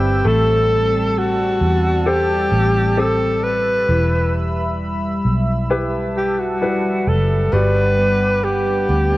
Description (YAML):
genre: pop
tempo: 66 BPM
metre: 4/4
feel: straight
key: unclear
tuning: A4 = 442 Hz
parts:
  - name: breathy alto saxophone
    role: melody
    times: 0.0-9.2 s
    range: F#4 to B4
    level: -18 LUFS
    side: equal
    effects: none
  - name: clear grand piano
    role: accompaniment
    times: 0.0-9.2 s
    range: E3 to C5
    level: -24 LUFS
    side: left 2 dB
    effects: none
  - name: warm analog pad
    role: sustained chords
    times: 0.0-9.2 s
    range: G3 to E6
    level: -24 LUFS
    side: left 1 dB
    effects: chorus
  - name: vintage muted fingered electric bass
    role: bass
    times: 0.0-9.2 s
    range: E1 to E2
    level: -20 LUFS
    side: equal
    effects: none
  - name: nylon-string guitar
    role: arpeggios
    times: 7.5-9.2 s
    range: G3 to F#4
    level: -25 LUFS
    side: right 3 dB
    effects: none
room: light reverb, small room ambience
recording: worn, warbling old tape, cassette tape, warbly pitch drift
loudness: -15 LUFS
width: side -18 dB against mid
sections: 0.0-9.2 A section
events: none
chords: 0.3 Am7; 3.9 Em; 7.5 Gmaj7